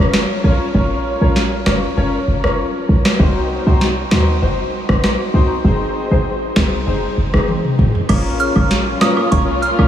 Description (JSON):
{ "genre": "dancehall", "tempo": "98 BPM", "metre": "4/4", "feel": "straight", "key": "Bb minor", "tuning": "A4 = 439 Hz", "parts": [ { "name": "clear concert grand piano", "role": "accompaniment", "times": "0.0-9.9 s", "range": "C4 to Db5", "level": "-20 LUFS", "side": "left 2 dB", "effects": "ensemble chorus, sidechain pumping" }, { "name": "short 808-style bass", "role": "bass", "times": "0.0-9.9 s", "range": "Gb1 to Eb2", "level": "-16 LUFS", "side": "equal", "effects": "none" }, { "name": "booming analog drum machine", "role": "drums", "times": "0.1-9.8 s", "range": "crash cymbal, hi-hat, kick drum, rim click, snare drum, toms", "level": "-18 LUFS", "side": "equal", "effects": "none" }, { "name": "muted studio string section", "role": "sustained chords", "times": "8.1-9.9 s", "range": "Bb3 to F4", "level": "-22 LUFS", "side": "equal", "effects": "sidechain pumping" }, { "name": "woodblock and cabasa", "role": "percussion", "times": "8.1-9.9 s", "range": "none", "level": "-28 LUFS", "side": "right 7 dB", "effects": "none" }, { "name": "soft synth bell", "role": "melody", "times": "8.4-9.7 s", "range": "Db6 to F6", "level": "-19 LUFS", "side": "right 3 dB", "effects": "chorus, analog delay" } ], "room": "wet huge ambient reverb, RT60 7.8 s", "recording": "dreamy mix soaked in reverb, studio reverb", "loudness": "-14 LUFS", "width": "side -10 dB against mid", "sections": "0.0-8.1 A section; 8.1-9.9 B section", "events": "drum fill 7.5-8.1", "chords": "0.0 Bbm; 3.2 Cdim; 5.6 Ab; 8.1 Bbm", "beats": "0.14 | 0.75 1.36 1.97 2.58 | 3.20 3.81 4.42 5.03 | 5.64 6.26 6.87 7.48 | 8.09 8.71 9.32" }